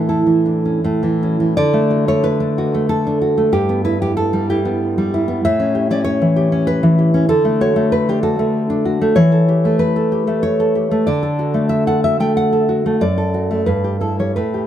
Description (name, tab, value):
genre	romantic piece for solo classical guitar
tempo	94 BPM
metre	3/4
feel	uneven beats, rubato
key	D major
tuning	A4 = 442 Hz
part	nylon-string guitar	solo	0.0-14.7 s	F#2 to G5	-14 LUFS	equal	none
room	light reverb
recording	none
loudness	-14 LUFS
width	side -10 dB against mid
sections	0.0-1.6 A section; 1.6-14.7 B section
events	none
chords	0.0 Asus4; 0.8 A; 1.6 D; 3.5 Em/G; 5.4 A7; 7.3 D; 9.2 A7/E; 11.1 D; 13.0 D/F#; 13.7 Em/G